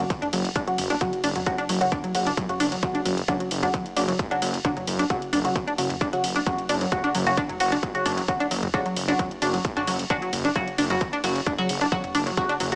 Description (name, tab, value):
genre	driving peak-time techno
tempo	132 BPM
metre	4/4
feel	straight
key	unclear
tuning	A4 = 439 Hz
part	tight sequenced synth	riff	0.0-12.7 s	F#3 to D4	-30 LUFS	equal	chorus, tube saturation, sidechain pumping, tape echo
part	filtered dub chord stab	stabs	0.0-12.8 s	C#3 to F#4	-30 LUFS	equal	phaser, subtle chorus, cassette tape, sidechain pumping, tape echo
part	detuned saw bass	bass	0.0-12.8 s	F#1	-31 LUFS	equal	tube saturation, sidechain pumping
part	electronic kick drum	drums	0.1-12.5 s	none	-32 LUFS	equal	distortion, overdrive
part	techno drum kit	drums	0.1-12.8 s	hi-hat, ride cymbal, toms	-35 LUFS	equal	overdrive, sidechain pumping on hats, sidechain pumping on toms, sidechain pumping on cymbals
room	moderate stone room reverb, RT60 1.3 s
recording	small speaker sound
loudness	-25 LUFS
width	mono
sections	0.0-12.8 A section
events	none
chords	0.0 F#5